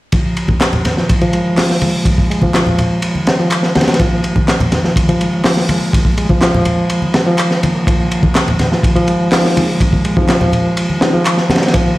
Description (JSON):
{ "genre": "breakbeat, breaks", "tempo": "124 BPM", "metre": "4/4", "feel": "straight", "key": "F minor", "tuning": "A4 = 437 Hz", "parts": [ { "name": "reed electric piano", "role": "riff", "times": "0.1-12.0 s", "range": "Eb3 to Bb3", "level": "-15 LUFS", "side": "equal", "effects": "overdrive, fast tremolo, low-pass filter, digital delay" }, { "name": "crunchy breakbeat drum kit", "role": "drums", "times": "0.1-11.9 s", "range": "hi-hat, kick drum, ride cymbal, snare drum", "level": "-15 LUFS", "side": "equal", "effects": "none" }, { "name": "congas", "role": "percussion", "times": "0.5-11.6 s", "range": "none", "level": "-20 LUFS", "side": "equal", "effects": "none" }, { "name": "electronic handclaps", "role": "drums", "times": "0.6-11.4 s", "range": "none", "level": "-19 LUFS", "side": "left 1 dB", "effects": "none" }, { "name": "mellow tine electric piano", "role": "stabs", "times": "9.3-11.1 s", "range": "C4 to Ab4", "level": "-22 LUFS", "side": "left 1 dB", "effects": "medium stereo tremolo, vintage 12-bit sampler grit, digital delay" } ], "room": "moderate studio ambience, RT60 0.5 s", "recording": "played on a big sound system in a bare room, stone room reverb, vinyl crackle", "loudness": "-11 LUFS", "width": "side -18 dB against mid", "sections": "0.1-12.0 A section", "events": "filter sweep on reed electric piano 0.1-12.0", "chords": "0.1 Fm7" }